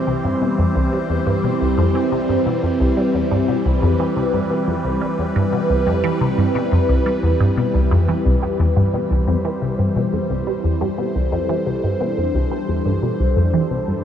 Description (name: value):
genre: ambient, sequencer-driven space music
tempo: 88 BPM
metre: 4/4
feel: straight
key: C major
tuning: A4 = 439 Hz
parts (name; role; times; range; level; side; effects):
- phased analog pad; sustained chords; 0.0-14.0 s; E3 to C5; -20 LUFS; equal; phaser, chorus, shimmer reverb
- resonant blip pluck; riff; 0.1-13.9 s; C2 to G3; -19 LUFS; equal; phaser, analog chorus, cassette tape, ping-pong delay
room: wet huge ambient reverb, RT60 7.3 s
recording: dark, warm production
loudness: -16 LUFS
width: side -9 dB against mid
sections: 0.0-14.0 A section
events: none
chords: 0.0 C